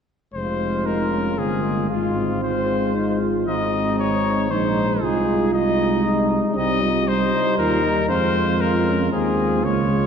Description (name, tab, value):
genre	classical, brass quintet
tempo	116 BPM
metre	3/4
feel	straight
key	F minor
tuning	A4 = 439 Hz
part	clear trumpet	melody	0.3-10.1 s	F4 to Eb5	-24 LUFS	left 4 dB	none
part	clear flugelhorn	second line	0.3-10.1 s	Eb4 to F4	-28 LUFS	right 5 dB	none
part	mellow French horn	accompaniment	0.3-10.1 s	G3 to Ab3	-24 LUFS	left 2 dB	none
part	dark bass trombone	bass	0.3-10.1 s	F1 to F2	-24 LUFS	right 1 dB	none
part	warm trombone	accompaniment	0.9-10.1 s	Ab3 to F4	-25 LUFS	right 3 dB	none
room	wet church reverb, RT60 2.9 s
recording	dark, warm production, lossy compression artefacts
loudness	-18 LUFS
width	side -7 dB against mid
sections	0.3-10.1 A section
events	none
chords	0.3 Fm; 1.9 Fm/Ab; 3.5 Ab; 5.0 Ab/C; 6.6 Cm; 8.1 Fm